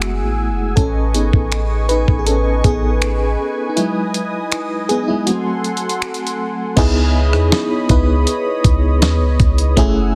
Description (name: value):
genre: contemporary R&B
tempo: 80 BPM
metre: 4/4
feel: straight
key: C# minor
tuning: A4 = 439 Hz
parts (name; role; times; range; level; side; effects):
- FM electric piano with tremolo; accompaniment; 0.0-10.2 s; F#3 to B4; -22 LUFS; equal; none
- warm analog pad; sustained chords; 0.0-10.2 s; A3 to E6; -27 LUFS; equal; chorus, sidechain pumping
- clean 808-style bass; bass; 0.0-10.2 s; F#1 to E2; -19 LUFS; equal; none
- dusty soul sampler-style drum kit; drums; 0.0-9.9 s; crash cymbal, finger snaps, hi-hat, kick drum, rim click, snare drum; -20 LUFS; equal; soft clipping on snare
room: digital ambience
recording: dense, heavily limited modern master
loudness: -16 LUFS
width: mono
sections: 0.0-6.8 A section; 6.8-10.2 B section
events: FM electric piano solo 0.0-6.8; break 3.8-6.8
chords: 0.0 F#m9; 0.8 Amaj9#11; 3.8 Emaj7; 5.3 G#7b9; 6.8 C#m9